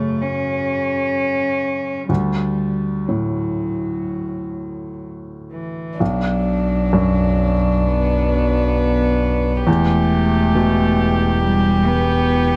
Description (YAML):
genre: neoclassical piano and strings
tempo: 61-69 BPM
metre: 4/4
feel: rubato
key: B minor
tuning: A4 = 440 Hz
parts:
  - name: warm cello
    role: second line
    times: 0.0-12.6 s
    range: E3 to C#4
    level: -23 LUFS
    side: equal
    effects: none
  - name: felt-muted upright piano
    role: accompaniment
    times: 0.0-12.6 s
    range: B1 to C#3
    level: -25 LUFS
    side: equal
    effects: none
  - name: warm violin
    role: melody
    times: 6.0-12.6 s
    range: D4 to G4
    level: -25 LUFS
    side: equal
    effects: none
  - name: rich double bass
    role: bass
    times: 6.0-12.6 s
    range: E1 to B1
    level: -22 LUFS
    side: equal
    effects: none
room: light reverb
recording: dark, warm production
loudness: -18 LUFS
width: mono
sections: 0.0-6.0 A section; 6.0-12.6 A section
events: none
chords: 0.0 F#5; 2.1 D; 6.0 Bm; 9.7 Em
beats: 0.21 1.13 | 2.09 3.08 4.07 5.05 | 6.00 6.92 7.87 8.78 | 9.67 10.55 11.44 12.32